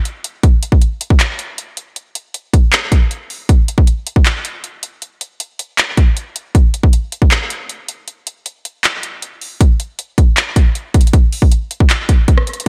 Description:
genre	hip hop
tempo	157 BPM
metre	4/4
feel	half-time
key	none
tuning	none
part	trap drum kit	drums	0.1-12.7 s	handclaps, hi-hat, kick drum, rim click	-14 LUFS	equal	none
room	light reverb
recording	none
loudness	-14 LUFS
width	mono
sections	0.0-9.6 A section; 9.6-12.7 B section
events	break 8.1-9.6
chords	none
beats	0.05 | 0.43 0.82 1.20 1.58 | 1.96 2.34 2.73 3.11 | 3.49 3.87 4.25 4.64 | 5.02 5.40 5.78 6.17 | 6.55 6.93 7.31 7.70 | 8.08 8.46 8.84 9.22 | 9.61 9.99 10.37 10.75 | 11.13 11.52 11.90 12.28 | 12.66

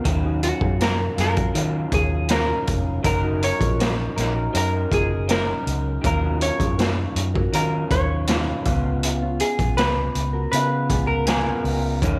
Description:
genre	indie pop, bedroom pop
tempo	80 BPM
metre	4/4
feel	straight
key	unclear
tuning	A4 = 438 Hz
part	electric guitar through a small old amp	accompaniment	0.0-12.2 s	C#3 to A#4	-30 LUFS	equal	subtle chorus, vibrato effect
part	raw garage drum kit	drums	0.0-12.2 s	hi-hat, kick drum, snare drum	-27 LUFS	equal	none
part	vintage muted fingered electric bass	bass	0.1-12.2 s	E#1 to D#3	-27 LUFS	equal	none
part	mellow electric guitar	second line	0.2-11.1 s	C#4 to C#5	-36 LUFS	equal	none
part	vintage hollow-body jazz guitar	melody	0.4-11.8 s	F#4 to C#5	-28 LUFS	equal	subtle chorus, slapback echo
room	light reverb, small room ambience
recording	none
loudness	-22 LUFS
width	mono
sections	0.0-12.2 A section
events	none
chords	0.1 D#m9; 3.1 F#6; 6.0 D#m9; 8.7 C#6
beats	| 0.06 0.81 1.55 2.30 | 3.05 3.80 4.55 5.30 | 6.04 6.79 7.54 8.29 | 9.04 9.78 10.53 11.28 | 12.03

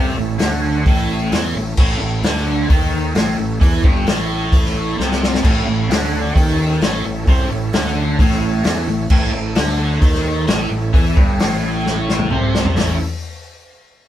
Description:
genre	blues rock power trio and southern rock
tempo	131 BPM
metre	4/4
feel	straight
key	unclear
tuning	A4 = 440 Hz
part	overdriven tonewheel organ	sustained chords	0.0-13.1 s	C#4 to E5	-31 LUFS	right 2 dB	chorus vibrato, fast rotary speaker
part	biting overdriven guitar	riff	0.0-13.0 s	G2 to E4	-20 LUFS	equal	phaser
part	fuzz fingered electric bass	bass	0.0-13.0 s	G1 to E2	-22 LUFS	equal	overdrive
part	vintage drum kit	drums	0.4-12.9 s	crash cymbal, hi-hat, kick drum, snare drum, toms	-17 LUFS	equal	none
room	moderate studio reverb, RT60 0.6 s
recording	band playing live in one room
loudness	-14 LUFS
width	side -12 dB against mid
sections	0.0-5.4 A section; 5.4-12.8 A section; 12.8-14.1 B section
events	drum fill 5.0-5.4, 11.9-12.8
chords	0.0 A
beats	0.41 0.86 1.32 | 1.78 2.23 2.69 3.15 | 3.60 4.06 4.52 4.98 | 5.43 5.89 6.35 6.81 | 7.27 7.73 8.18 8.64 | 9.10 9.56 10.02 10.48 | 10.94 11.40 11.86 12.32 | 12.78

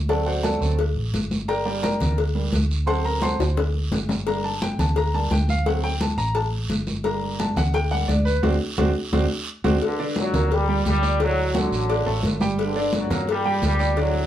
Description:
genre	latin, salsa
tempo	173 BPM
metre	4/4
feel	straight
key	G harmonic minor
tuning	A4 = 441 Hz
part	vintage muted fingered electric bass	bass	0.0-14.3 s	G1 to G2	-24 LUFS	equal	none
part	clear concert grand piano	accompaniment	0.1-14.3 s	D3 to D6	-25 LUFS	right 2 dB	none
part	congas	percussion	0.1-14.3 s	none	-27 LUFS	equal	none
part	cowbell and bongos	percussion	0.1-14.1 s	none	-29 LUFS	left 6 dB	none
part	guiro	percussion	0.1-14.3 s	none	-36 LUFS	right 5 dB	none
part	clear trombone section	melody	9.8-14.3 s	F#2 to G3	-25 LUFS	equal	none
room	wet studio reverb, RT60 0.5 s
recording	band playing live in one room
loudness	-20 LUFS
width	side -11 dB against mid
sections	0.0-9.8 A section; 9.8-14.3 B section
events	grand piano solo 0.0-9.8; drum fill 3.4-4.3; band accent 8.4-9.8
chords	0.1 D7; 1.5 Gm; 2.9 D7; 4.3 Gm; 5.7 D7; 7.0 Gm; 8.4 D7; 9.8 Gm; 11.2 D; 12.6 Gm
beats	| 0.10 0.44 0.79 1.14 | 1.49 1.83 2.18 2.53 | 2.88 3.23 3.57 3.92 | 4.27 4.62 4.96 5.31 | 5.66 6.00 6.35 6.70 | 7.04 7.39 7.74 8.09 | 8.43 8.78 9.12 9.47 | 9.81 10.16 10.51 10.85 | 11.20 11.54 11.89 12.23 | 12.58 12.93 13.27 13.62 | 13.96

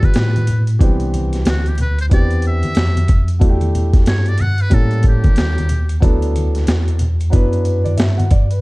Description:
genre	hip hop, jazz-hop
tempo	92 BPM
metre	4/4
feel	swing 61% on 16ths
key	unclear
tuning	A4 = 439 Hz
part	trumpet with metal mute	melody	0.0-6.0 s	F#4 to F#5	-26 LUFS	equal	none
part	warm upright piano	accompaniment	0.0-8.6 s	E3 to F#5	-22 LUFS	equal	none
part	mellow tine electric piano	bass	0.0-8.6 s	C2 to A2	-16 LUFS	equal	medium stereo tremolo
part	boom bap sampler-style drum kit	drums	0.0-8.6 s	hi-hat, kick drum, snare drum	-15 LUFS	equal	none
part	congas and maracas	percussion	0.0-8.6 s	none	-26 LUFS	left 1 dB	none
room	small room ambience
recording	dark, warm production, vinyl crackle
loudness	-13 LUFS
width	side -22 dB against mid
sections	0.0-8.6 A section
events	muted trumpet solo 0.0-8.6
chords	0.0 G7; 0.8 Cmaj9; 3.4 Em11; 4.7 A7b9; 6.0 D69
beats	0.15 | 0.80 1.46 2.11 2.76 | 3.41 4.06 4.72 5.37 | 6.02 6.67 7.33 7.98

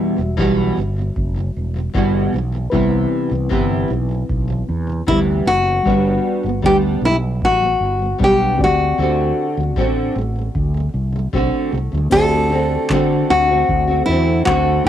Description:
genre	acoustic pop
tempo	77 BPM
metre	4/4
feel	straight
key	unclear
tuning	A4 = 440 Hz
part	mellow reed electric piano	accompaniment	0.0-14.9 s	G3 to F#5	-27 LUFS	left 3 dB	fast tremolo
part	nylon-string guitar	accompaniment	0.0-14.9 s	E2 to F#4	-20 LUFS	right 1 dB	double-tracked left and right
part	fretless electric bass	bass	0.2-14.9 s	E1 to D3	-20 LUFS	equal	lush chorus
part	booming analog drum machine	drums	0.4-14.9 s	crash cymbal, handclaps, kick drum	-25 LUFS	equal	cassette tape
part	nylon-string guitar	melody	5.1-14.9 s	E4 to A4	-17 LUFS	left 2 dB	analog delay
room	little or no reverb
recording	home recording on cassette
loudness	-15 LUFS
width	side -10 dB against mid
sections	0.0-12.1 A section; 12.1-14.9 B section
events	none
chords	0.0 Emadd9; 2.7 Cmaj7; 5.9 Gmaj7; 8.6 D7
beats	0.38 1.16 1.94 | 2.73 3.51 4.29 5.07 | 5.86 6.64 7.42 8.20 | 8.98 9.77 10.55 11.33 | 12.12 12.90 13.68 14.46

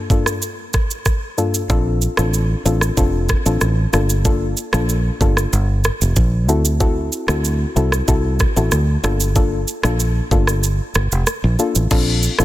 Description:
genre	afrobeats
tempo	94 BPM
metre	4/4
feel	straight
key	G dorian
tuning	A4 = 440 Hz
part	soft round pluck	accompaniment	0.0-12.4 s	G2 to A4	-22 LUFS	left 3 dB	chorus
part	afro-pop drum kit	drums	0.1-12.4 s	crash cymbal, kick drum, rim click, shaker	-19 LUFS	right 1 dB	soft clipping on snare
part	fingered electric bass	bass	1.7-12.4 s	F1 to D2	-17 LUFS	equal	none
room	little or no reverb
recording	dense, heavily limited modern master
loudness	-15 LUFS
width	side -15 dB against mid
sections	0.0-11.9 A section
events	kick muted 10.6-11.9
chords	0.0 Gm7; 1.7 Bbmaj7; 3.9 Gm7; 6.5 D7; 9.0 Gm7; 11.9 Bbmaj7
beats	0.42 1.06 | 1.70 2.34 2.97 3.61 | 4.25 4.89 5.53 6.17 | 6.80 7.44 8.08 8.72 | 9.36 10.00 10.63 11.27 | 11.91

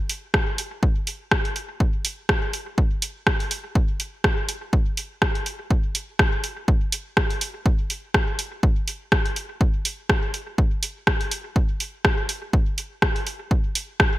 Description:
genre	techno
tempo	123 BPM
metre	4/4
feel	swing 56% on 16ths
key	none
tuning	none
part	punchy analog drum machine	drums	0.1-14.1 s	hi-hat, rim click	-24 LUFS	equal	gated reverb
part	electronic kick drum	drums	0.3-14.1 s	none	-21 LUFS	equal	none
room	digital ambience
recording	bright 1980s-style digital production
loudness	-21 LUFS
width	side -17 dB against mid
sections	0.0-14.2 A section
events	none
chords	none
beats	0.34 0.83 1.31 | 1.80 2.29 2.78 3.27 | 3.75 4.24 4.73 5.22 | 5.71 6.19 6.68 7.17 | 7.66 8.14 8.63 9.12 | 9.61 10.10 10.58 11.07 | 11.56 12.05 12.53 13.02 | 13.51 14.00

